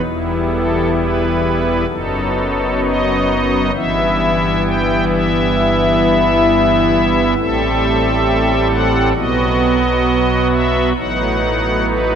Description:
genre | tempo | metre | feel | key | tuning
classical, chorale-style piece for pipe organ | 66 BPM | 4/4 | rubato | E minor | A4 = 441 Hz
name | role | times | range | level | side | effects
pipe organ, strings celeste | solo | 0.1-12.2 s | E1 to G5 | -13 LUFS | equal | none
room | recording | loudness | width
wet church reverb, RT60 3.3 s | none | -13 LUFS | side -8 dB against mid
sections
0.0-12.2 A section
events
none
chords
0.1 Em; 1.9 B7/F#; 3.7 Em/G; 7.4 Am7; 9.2 B; 11.0 B7/A

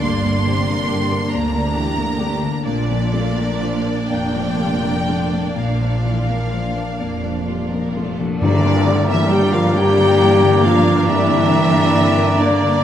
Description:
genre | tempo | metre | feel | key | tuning
cinematic, emotional film score for orchestra | 40-47 BPM (dotted quarters) | 6/8 | rubato | G dorian | A4 = 440 Hz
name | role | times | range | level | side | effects
warm studio violin section | melody | 0.0-12.8 s | D5 to C6 | -27 LUFS | left 1 dB | none
rich studio violin section | second line | 0.0-12.8 s | Bb3 to G5 | -27 LUFS | left 2 dB | none
felt-muted upright piano | accompaniment | 0.0-12.8 s | G2 to Bb4 | -24 LUFS | left 2 dB | none
warm studio viola section | accompaniment | 0.0-12.8 s | Bb3 to D4 | -24 LUFS | right 3 dB | none
concert harp | arpeggios | 0.0-12.8 s | G2 to D5 | -25 LUFS | left 7 dB | none
warm studio cello section | bass | 0.0-12.8 s | D2 to G3 | -24 LUFS | right 3 dB | none
warm studio double bass section | bass | 0.0-12.8 s | F1 to G2 | -24 LUFS | right 3 dB | none
cymbal swell and tam-tam | percussion | 5.6-11.9 s | none | -29 LUFS | left 1 dB | none
bright small flute group | second line | 8.4-12.8 s | Bb5 | -26 LUFS | equal | none
warm clarinet | second line | 8.4-12.8 s | G3 to C4 | -26 LUFS | equal | none
warm oboe | second line | 8.4-12.8 s | D5 | -23 LUFS | right 3 dB | none
mellow French horn section | sustained chords | 8.4-12.8 s | D4 to G4 | -18 LUFS | left 4 dB | none
timpani | percussion | 8.4-9.7 s | G2 | -23 LUFS | equal | none
room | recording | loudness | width
moderate scoring stage reverb, RT60 1.7 s | close, detailed microphones | -15 LUFS | side -10 dB against mid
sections
0.0-8.4 A section; 8.4-12.8 A section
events
band accent 8.4-9.3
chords
0.0 Gm; 2.6 Bb; 8.4 Gm

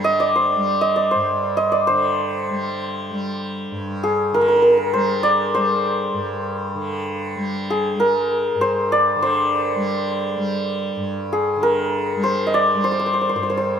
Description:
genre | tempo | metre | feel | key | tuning
indian classical, Hindustani | 98 BPM | 3/4 | straight | G raga bhairavi | A4 = 441 Hz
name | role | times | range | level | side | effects
santur | melody | 0.0-13.8 s | Ab4 to Eb5 | -18 LUFS | equal | tape echo
tanpura | drone | 0.0-13.8 s | G2 to G3 | -26 LUFS | equal | none
room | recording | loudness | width
light reverb | close, detailed microphones | -18 LUFS | side -8 dB against mid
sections
0.0-1.9 A section; 1.9-13.8 B section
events
none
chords
none

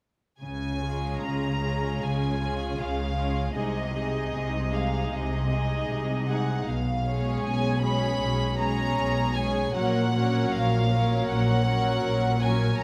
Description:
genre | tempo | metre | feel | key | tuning
classical, slow romantic movement for string orchestra | 78 BPM | 4/4 | rubato | Db major | A4 = 440 Hz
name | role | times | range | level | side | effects
rich studio violin section | melody | 0.4-12.8 s | Eb5 to Cb6 | -34 LUFS | equal | none
dark studio double bass section | bass | 0.4-12.8 s | Bb1 to Db2 | -32 LUFS | equal | none
warm studio cello section | bass | 0.4-12.8 s | Bb2 to Db3 | -32 LUFS | equal | none
warm studio violin section | second line | 0.8-12.8 s | F4 to Db5 | -35 LUFS | equal | none
rich studio viola section | accompaniment | 0.8-12.8 s | Gb3 to Eb4 | -34 LUFS | equal | none
room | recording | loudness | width
moderate scoring stage reverb, RT60 2.0 s | none | -26 LUFS | mono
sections
0.4-12.8 A section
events
none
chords
0.4 Db; 3.5 Ab/C; 6.7 Db7/Cb; 9.8 Gb/Bb

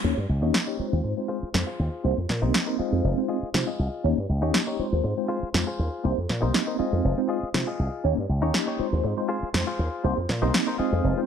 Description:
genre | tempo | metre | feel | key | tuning
filtered disco house | 120 BPM | 4/4 | swing 53% on 16ths | Ab major | A4 = 440 Hz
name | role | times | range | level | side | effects
tine electric piano | accompaniment | 0.0-11.3 s | Ab3 to Eb5 | -27 LUFS | equal | medium stereo tremolo, phaser, low-pass filter
slap bass with an envelope filter | bass | 0.0-11.1 s | F1 to C3 | -25 LUFS | equal | tube saturation, low-pass filter
direct-recorded clean electric guitar | riff | 0.4-11.2 s | Eb4 to Eb5 | -32 LUFS | left 4 dB | vintage 12-bit sampler grit, low-pass filter
electronic snare drum | drums | 0.5-10.6 s | none | -26 LUFS | equal | none
room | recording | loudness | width
light reverb | none | -23 LUFS | side -8 dB against mid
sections
0.0-11.3 A section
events
filter sweep 0.0-11.3; clean electric guitar fill 11.0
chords
0.0 Eb7; 1.0 Ab6; 2.0 Cm7; 2.8 Fm7; 4.0 Eb7; 5.0 Ab6; 6.0 Cm7; 6.8 Fm7; 8.0 Eb7; 9.0 Ab6; 10.0 Cm7

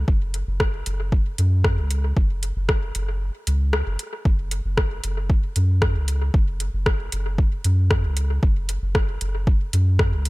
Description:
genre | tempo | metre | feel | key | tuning
dub techno | 115 BPM | 4/4 | straight | unclear | A4 = 440 Hz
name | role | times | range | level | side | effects
soft dub sub bass | bass | 0.0-10.3 s | F#1 to F#2 | -22 LUFS | equal | sidechain pumping
electronic kick drum | drums | 0.1-10.1 s | none | -20 LUFS | equal | overdrive
deep house drum kit | drums | 0.3-10.3 s | hi-hat, rim click | -27 LUFS | left 1 dB | overdrive, dub echo
room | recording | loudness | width
digital ambience | echo-heavy mix | -20 LUFS | side -21 dB against mid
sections
0.0-10.3 A section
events
kick drops out 3.2-4.3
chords
none

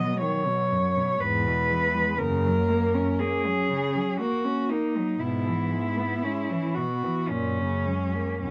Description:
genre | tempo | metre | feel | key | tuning
classical, lyrical piece for cello ensemble | 53-62 BPM | 3/4 | rubato | unclear | A4 = 440 Hz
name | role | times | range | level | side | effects
muted cello | melody | 0.0-8.5 s | C#4 to D#5 | -29 LUFS | equal | none
muted cello | second line | 0.0-8.5 s | F#3 to C#4 | -33 LUFS | equal | none
muted cello | accompaniment | 0.0-8.5 s | D#2 to C#4 | -32 LUFS | equal | none
muted cello | bass | 0.0-8.5 s | E2 to B2 | -33 LUFS | equal | none
room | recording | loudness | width
light reverb | close, detailed microphones | -26 LUFS | mono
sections
0.0-8.5 A section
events
none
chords
0.0 B; 1.2 E; 2.2 F#; 5.2 E/G#; 7.3 F#

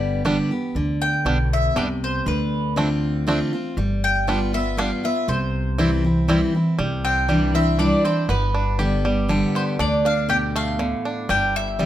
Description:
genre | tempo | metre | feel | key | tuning
bluegrass | 120 BPM | 3/4 | straight | C major | A4 = 440 Hz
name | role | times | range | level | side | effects
picked steel-string acoustic guitar | accompaniment | 0.0-11.9 s | G2 to G4 | -22 LUFS | equal | none
upright bass | bass | 0.0-11.9 s | G1 to D2 | -25 LUFS | equal | none
bluegrass banjo | melody | 0.3-11.9 s | D3 to G4 | -27 LUFS | right 2 dB | none
mandolin | melody | 1.0-11.9 s | B4 to G5 | -23 LUFS | equal | slapback echo
room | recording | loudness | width
light reverb | close, detailed microphones | -19 LUFS | side -12 dB against mid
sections
0.0-6.8 A section; 6.8-11.9 A section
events
none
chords
0.0 G; 2.3 Dm7; 3.8 G7; 5.3 C; 6.8 Cadd9; 8.3 G; 9.8 Dm; 11.3 G5

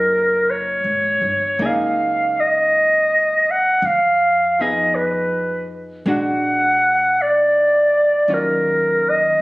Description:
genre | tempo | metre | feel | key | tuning
jazz ballad | 54 BPM | 4/4 | swing 68% on 8ths | unclear | A4 = 443 Hz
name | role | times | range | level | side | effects
breathy clarinet | melody | 0.0-9.4 s | Bb4 to Gb5 | -15 LUFS | equal | none
hollow-body jazz guitar | accompaniment | 0.0-9.4 s | Eb3 to Ab4 | -26 LUFS | equal | none
upright bass | bass | 0.0-9.4 s | Gb1 to F2 | -33 LUFS | left 1 dB | none
room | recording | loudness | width
light reverb | recorded on a phone in the room, studio reverb | -15 LUFS | side -22 dB against mid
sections
0.0-9.4 A section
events
none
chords
0.0 Gb69; 3.8 Fm7b5; 6.1 Bbaug7; 8.3 Ebm9

